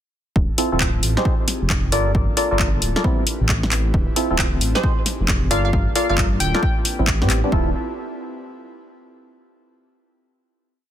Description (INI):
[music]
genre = UK garage, two-step garage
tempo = 134 BPM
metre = 4/4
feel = swing 64% on 16ths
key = D minor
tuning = A4 = 436 Hz
[part]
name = airy breathy pad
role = sustained chords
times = 0.4-7.7 s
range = Bb3 to B4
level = -32 LUFS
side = equal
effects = chorus, sidechain pumping
[part]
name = dark detuned saw bass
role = bass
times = 0.4-7.7 s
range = D1 to A2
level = -21 LUFS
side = equal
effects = none
[part]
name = electronic kick drum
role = drums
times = 0.4-7.6 s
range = none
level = -21 LUFS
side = equal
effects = none
[part]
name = percussive organ stab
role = stabs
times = 0.6-7.7 s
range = G3 to D5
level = -24 LUFS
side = equal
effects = wide subtle chorus, dub echo
[part]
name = house drum kit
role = drums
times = 0.6-7.4 s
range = handclaps, hi-hat, snare drum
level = -22 LUFS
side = left 1 dB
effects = soft clipping on snare
[part]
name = hollow square pluck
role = melody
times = 4.8-6.7 s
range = C5 to G5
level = -27 LUFS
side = equal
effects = analog chorus, dub echo
[sound]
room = little or no reverb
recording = dense, heavily limited modern master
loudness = -17 LUFS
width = side -11 dB against mid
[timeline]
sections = 0.4-7.5 groove; 7.5-9.3 final chord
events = none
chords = 0.4 Dm7; 1.3 Fm7; 1.9 Gm7; 3.0 Am7; 3.9 Dm7; 4.8 Fm7; 5.5 Gm7; 6.6 Am7; 7.5 Dm7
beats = | 0.36 0.81 1.25 1.70 | 2.15 2.60 3.04 3.49 | 3.94 4.39 4.83 5.28 | 5.73 6.18 6.63 7.07 | 7.52